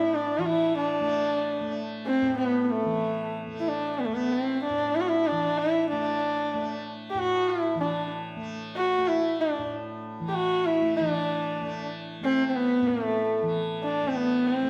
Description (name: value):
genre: indian classical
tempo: 94 BPM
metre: 4/4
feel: straight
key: A raga bhimpalasi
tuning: A4 = 441 Hz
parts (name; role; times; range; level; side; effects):
- dark sarangi; melody; 0.0-14.7 s; A3 to G4; -27 LUFS; equal; none
- tanpura; drone; 0.0-14.7 s; A2 to A3; -37 LUFS; equal; none
room: moderate recital hall reverb, RT60 1.3 s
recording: none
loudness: -27 LUFS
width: mono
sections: 0.0-11.0 A section; 11.0-14.7 B section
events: none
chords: none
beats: 0.14 | 0.79 1.43 2.07 2.71 | 3.35 3.99 4.62 5.26 | 5.90 6.54 7.17 7.81 | 8.45 9.08 9.72 10.35 | 10.99 11.62 12.25 12.89 | 13.52 14.15